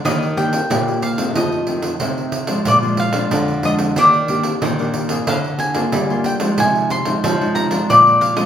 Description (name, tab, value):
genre	samba and choro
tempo	92 BPM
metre	4/4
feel	straight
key	Eb major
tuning	A4 = 440 Hz
part	nylon-string guitar	bass	0.0-8.4 s	Bb2 to G3	-23 LUFS	equal	none
part	mandolin	melody	0.1-8.5 s	D5 to C6	-17 LUFS	left 1 dB	none
part	nylon-string guitar	accompaniment	0.1-8.5 s	F2 to Ab4	-21 LUFS	left 1 dB	none
part	pandeiro	percussion	0.1-8.5 s	none	-22 LUFS	right 3 dB	none
room	wet large studio reverb, RT60 1.2 s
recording	band playing live in one room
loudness	-15 LUFS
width	side -9 dB against mid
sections	0.0-8.5 A section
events	none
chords	0.0 Ebmaj7; 1.4 F7; 2.7 Bb7; 4.0 Ebmaj7; 5.3 Bb7/D; 6.6 Fm7/C; 7.9 Bb7